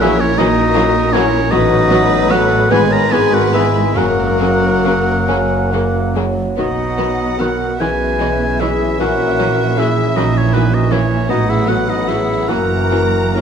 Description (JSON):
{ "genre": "classical, slow romantic movement for symphony orchestra", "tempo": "44-55 BPM (dotted quarters)", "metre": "6/8", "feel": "rubato", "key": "unclear", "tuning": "A4 = 438 Hz", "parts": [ { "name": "warm studio violin section", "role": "melody", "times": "0.0-13.4 s", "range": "A#4 to A#5", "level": "-24 LUFS", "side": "left 4 dB", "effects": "none" }, { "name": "clear oboe", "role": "second line", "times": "0.0-13.4 s", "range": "A#4 to A#5", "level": "-20 LUFS", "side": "right 2 dB", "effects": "none" }, { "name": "clear studio violin section", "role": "second line", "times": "0.0-13.4 s", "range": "G#3 to C#4", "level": "-25 LUFS", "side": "left 3 dB", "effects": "none" }, { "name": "hollow concert flute", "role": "second line", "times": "0.0-13.4 s", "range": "C#4 to C#5", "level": "-22 LUFS", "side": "left 2 dB", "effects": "none" }, { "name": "warm clarinet", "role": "second line", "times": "0.0-13.4 s", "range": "A#3 to A#4", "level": "-23 LUFS", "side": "left 2 dB", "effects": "none" }, { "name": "warm studio viola section", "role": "accompaniment", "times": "0.0-13.4 s", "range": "C#3 to B3", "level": "-23 LUFS", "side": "right 1 dB", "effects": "none" }, { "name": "warm French horn section", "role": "sustained chords", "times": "0.0-13.4 s", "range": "E3 to C#4", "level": "-21 LUFS", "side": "left 4 dB", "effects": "none" }, { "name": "rich studio cello section", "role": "bass", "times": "0.0-13.4 s", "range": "F#2 to B2", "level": "-22 LUFS", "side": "right 2 dB", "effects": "none" }, { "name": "rich studio double bass section", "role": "bass", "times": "0.0-13.4 s", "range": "F#1 to B1", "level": "-20 LUFS", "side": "right 4 dB", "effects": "none" }, { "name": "timpani", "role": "percussion", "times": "4.0-5.2 s", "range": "F#2", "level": "-30 LUFS", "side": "left 3 dB", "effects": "none" }, { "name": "mellow bassoon", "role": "accompaniment", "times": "5.3-6.6 s", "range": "F#3 to C#4", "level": "-22 LUFS", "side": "right 2 dB", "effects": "none" } ], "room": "moderate scoring stage reverb, RT60 1.9 s", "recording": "none", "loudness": "-12 LUFS", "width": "side -7 dB against mid", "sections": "0.0-13.4 A section", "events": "none", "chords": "0.0 F#7/A#; 1.5 B7/A; 2.7 E/G#; 4.0 F#; 6.6 B; 7.8 C#m7/B; 9.0 F#7/A#; 11.3 B5/A; 12.5 F#7" }